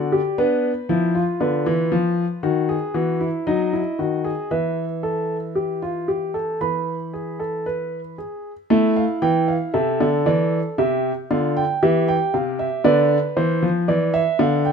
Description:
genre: classical, baroque-style 3-part fugue for grand piano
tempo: 58 BPM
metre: 4/4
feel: straight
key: A minor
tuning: A4 = 439 Hz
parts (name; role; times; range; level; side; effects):
- warm concert grand piano; solo; 0.0-14.7 s; C3 to B5; -18 LUFS; equal; none
room: moderate stone room reverb, RT60 1.1 s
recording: minimal, uncompressed stereo recording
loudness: -18 LUFS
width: side -6 dB against mid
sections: 0.0-8.7 A section; 8.7-14.7 B section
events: none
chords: 0.4 Bdim; 2.4 Emaj9/D#; 4.5 Esus4; 6.6 E; 8.7 Am; 10.8 C; 12.9 Bdim/D

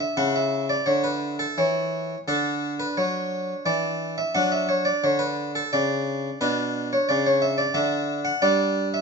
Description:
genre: classical, baroque-style suite movement for harpsichord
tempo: 87 BPM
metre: 3/4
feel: rubato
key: D major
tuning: A4 = 437 Hz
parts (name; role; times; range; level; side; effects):
- harpsichord; solo; 0.0-9.0 s; B2 to F#5; -22 LUFS; equal; none
room: wet stone room reverb, RT60 1.0 s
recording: heard from further back in the room, nothing above 7.7 kHz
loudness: -22 LUFS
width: side -4 dB against mid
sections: 0.0-9.0 A section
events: none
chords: 0.2 Bmadd9/C#; 6.4 Bm; 7.8 N.C.; 8.4 G5

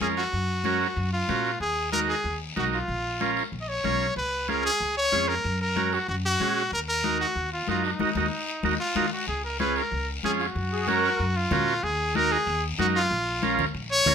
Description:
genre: latin, cumbia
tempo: 188 BPM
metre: 4/4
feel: straight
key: Eb minor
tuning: A4 = 440 Hz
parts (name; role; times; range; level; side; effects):
- brilliant trumpet; melody; 0.0-14.1 s; Eb4 to Eb5; -26 LUFS; equal; none
- combo organ; accompaniment; 0.0-14.1 s; Db4 to Bb4; -27 LUFS; right 5 dB; none
- upright bass; bass; 0.0-14.1 s; Bb1 to Bb2; -32 LUFS; equal; none
- congas; percussion; 0.0-14.1 s; none; -32 LUFS; left 7 dB; none
- guiro; percussion; 0.0-14.1 s; none; -37 LUFS; left 5 dB; none
- musette accordion; second line; 10.7-11.2 s; Ab4 to Bb4; -29 LUFS; left 1 dB; none
room: moderate studio reverb, RT60 0.6 s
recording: minimal, uncompressed stereo recording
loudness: -23 LUFS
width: side -7 dB against mid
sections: 0.0-9.3 A section; 9.3-14.1 A section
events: band accent 8.0-9.3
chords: 0.3 Gb; 1.6 Ebm; 2.9 Bbm; 4.2 Db; 5.4 Gb; 6.7 Ebm; 9.3 Db; 10.6 Gb; 11.8 Ebm; 13.1 Bbm

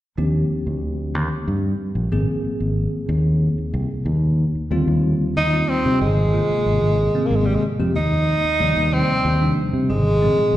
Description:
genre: electric jazz fusion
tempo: 62 BPM (dotted quarters)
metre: 6/8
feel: straight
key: Eb major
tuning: A4 = 440 Hz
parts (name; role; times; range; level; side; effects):
- bell-like tine electric piano; accompaniment; 0.2-10.6 s; Bb2 to D5; -23 LUFS; equal; fast stereo tremolo, slapback echo
- fingered electric bass; bass; 0.2-10.6 s; Ab1 to C3; -20 LUFS; equal; none
- clear tenor saxophone; melody; 5.4-10.6 s; G3 to Eb4; -20 LUFS; right 1 dB; slapback echo
room: light reverb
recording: live gig heard through the venue's PA, recital hall reverb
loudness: -17 LUFS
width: side -14 dB against mid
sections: 0.2-4.1 A section; 4.1-10.6 B section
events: none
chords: 0.2 Ebmaj13; 2.1 Ab69; 4.1 Ebmaj13; 6.0 Ab69; 8.0 Ebmaj13; 9.9 Ab69

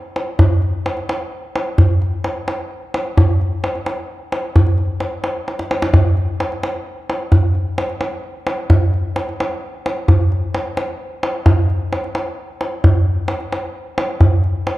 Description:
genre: persian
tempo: free time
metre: none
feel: none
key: none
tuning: none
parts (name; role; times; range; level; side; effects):
- tombak; percussion; 0.2-14.8 s; none; -15 LUFS; equal; none
room: wet scoring stage reverb, RT60 1.8 s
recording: dark, warm production, faint mains hum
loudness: -16 LUFS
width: side -18 dB against mid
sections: 0.4-11.5 A section; 11.5-14.8 A section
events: drum fill 5.5-5.9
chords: none

